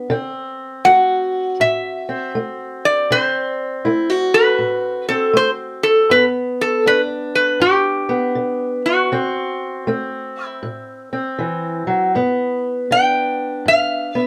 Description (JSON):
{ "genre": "acoustic country blues, solo or duo", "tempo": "80 BPM", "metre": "4/4", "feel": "swing 64% on 8ths", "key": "G major", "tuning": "A4 = 443 Hz", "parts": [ { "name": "fingerpicked steel-string acoustic guitar", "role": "accompaniment", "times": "0.0-14.3 s", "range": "G2 to F#4", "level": "-23 LUFS", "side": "equal", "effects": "none" }, { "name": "metal-body resonator slide guitar", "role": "melody", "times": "0.8-14.3 s", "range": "F#4 to G5", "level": "-18 LUFS", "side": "equal", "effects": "none" } ], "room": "light reverb", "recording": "none", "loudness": "-18 LUFS", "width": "mono", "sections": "0.0-12.1 A section; 12.1-14.3 A section", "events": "none", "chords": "0.1 D7; 6.1 G; 9.1 D7; 12.1 G7", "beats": "| 0.10 0.85 1.60 2.35 | 3.10 3.85 4.61 5.36 | 6.11 6.86 7.62 8.37 | 9.13 9.88 10.64 11.39 | 12.14 12.90 13.65" }